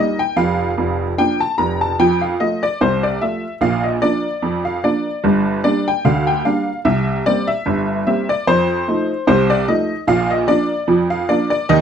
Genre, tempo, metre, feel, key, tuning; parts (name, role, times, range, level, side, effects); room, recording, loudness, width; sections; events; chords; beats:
ragtime piano; 74 BPM; 2/4; swing 54% on 16ths; Bb major; A4 = 445 Hz
honky-tonk upright piano; solo; 0.0-11.8 s; F1 to Bb5; -15 LUFS; equal
moderate studio reverb, RT60 0.6 s; close, detailed microphones; -15 LUFS; side -8 dB against mid
0.0-11.8 A section
0.4 Bb/F; 2.0 F; 3.6 Bb; 5.2 Gm; 6.9 C5; 8.5 F7; 10.1 Bb
| 0.36 1.18 | 1.99 2.80 | 3.61 4.42 | 5.24 6.05 | 6.86 7.67 | 8.48 9.29 | 10.09 10.90 | 11.71